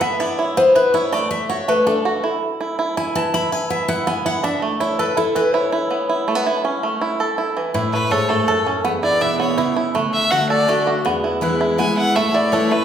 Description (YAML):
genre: bluegrass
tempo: 163 BPM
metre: 3/4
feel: straight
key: A major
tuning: A4 = 441 Hz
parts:
  - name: picked steel-string acoustic guitar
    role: accompaniment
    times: 0.0-12.8 s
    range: E2 to B5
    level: -20 LUFS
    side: left 2 dB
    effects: none
  - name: bluegrass banjo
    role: arpeggios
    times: 0.0-12.8 s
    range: E3 to A4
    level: -20 LUFS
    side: right 2 dB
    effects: none
  - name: clear fiddle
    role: melody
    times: 7.9-12.8 s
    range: A4 to G#5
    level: -20 LUFS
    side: equal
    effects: none
room: wet recital hall reverb, RT60 1.3 s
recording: recorded in a church or concert hall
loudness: -16 LUFS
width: side -9 dB against mid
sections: 0.0-7.7 A section; 7.7-12.8 A section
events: steel-string acoustic guitar solo 0.0-7.7; fiddle solo 7.7-12.8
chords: 0.0 E5; 1.1 D; 2.2 E5; 4.4 Dsus2; 5.5 E5; 6.6 A; 8.8 E5; 9.9 D; 11.1 E; 12.2 A